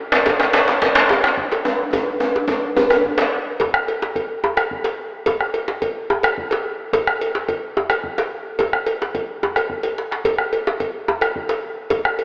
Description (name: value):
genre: west african traditional, West African drum ensemble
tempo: 144 BPM (dotted quarters)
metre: 12/8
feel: straight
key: none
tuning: none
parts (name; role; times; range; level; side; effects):
- djembe; percussion; 0.1-3.3 s; none; -19 LUFS; equal; none
- bombo; percussion; 0.3-12.2 s; none; -27 LUFS; equal; none
- cowbell; percussion; 0.3-12.2 s; none; -26 LUFS; equal; none
- djembe; percussion; 0.3-12.0 s; none; -28 LUFS; equal; none
room: wet lush hall reverb, RT60 2.7 s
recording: dreamy mix soaked in reverb, AM radio sound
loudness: -20 LUFS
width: mono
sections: 0.0-3.6 A section; 3.6-12.2 B section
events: drum fill 1.9-3.6, 9.8-10.2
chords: none